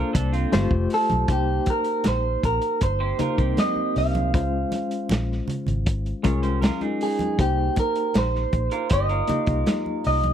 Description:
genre	lush 1970s-style soul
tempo	79 BPM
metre	4/4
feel	straight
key	C phrygian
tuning	A4 = 435 Hz
part	electric guitar at the edge of break-up	melody	0.0-10.3 s	G4 to F5	-25 LUFS	right 2 dB	spring reverb
part	reed electric piano	accompaniment	0.0-10.3 s	Ab3 to Eb5	-28 LUFS	left 5 dB	overdrive, fast tremolo
part	electric guitar through a small old amp	riff	0.0-10.2 s	C4 to Db5	-30 LUFS	right 5 dB	none
part	vintage drum kit	drums	0.1-10.3 s	hi-hat, kick drum, snare drum	-24 LUFS	equal	none
part	congas	percussion	0.1-10.3 s	none	-32 LUFS	right 2 dB	none
part	vintage muted fingered electric bass	bass	0.2-10.3 s	F1 to Db2	-25 LUFS	equal	none
room	little or no reverb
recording	dry, close 1970s-style studio recording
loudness	-20 LUFS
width	side -9 dB against mid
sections	0.0-1.3 A section; 1.3-10.3 B section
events	none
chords	0.0 Bbmaj9; 0.5 G9sus4; 1.3 Cm7; 4.3 Dbmaj7; 7.4 Cm7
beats	0.53 | 1.29 2.05 2.81 3.58 | 4.34 5.10 5.86 6.62 | 7.38 8.15 8.91 9.66

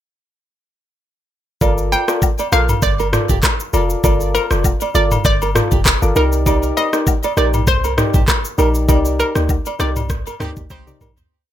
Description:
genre	afrobeats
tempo	99 BPM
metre	4/4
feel	swing 55% on 16ths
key	G minor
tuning	A4 = 440 Hz
part	soft electric-piano-like synth keys	accompaniment	1.6-11.1 s	Eb4 to D5	-20 LUFS	left 2 dB	chorus
part	nylon-string guitar	riff	1.6-11.1 s	G4 to D5	-25 LUFS	right 9 dB	digital delay
part	warm 808-style bass	bass	1.6-11.2 s	F1 to D2	-19 LUFS	equal	none
part	afro-pop drum kit	drums	1.6-11.3 s	handclaps, kick drum, rim click, shaker, toms	-17 LUFS	equal	none
part	agogo bells and woodblock	percussion	1.6-11.2 s	none	-26 LUFS	left 10 dB	none
part	hollow square pluck	melody	1.9-11.2 s	Bb4 to G5	-21 LUFS	equal	chorus, digital delay
part	clear horn section	second line	10.4-10.9 s	C4 to G4	-37 LUFS	right 5 dB	none
room	light reverb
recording	none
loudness	-14 LUFS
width	side -11 dB against mid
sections	1.6-11.3 chorus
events	fade-out 8.9-11.3; band accent 8.9-11.3; drum fill 10.7-11.3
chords	1.6 Gm7; 6.2 Cm7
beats	| 1.61 2.22 2.83 3.43 | 4.04 4.64 5.25 5.86 | 6.46 7.07 7.67 8.28 | 8.89 9.49 10.10 10.71

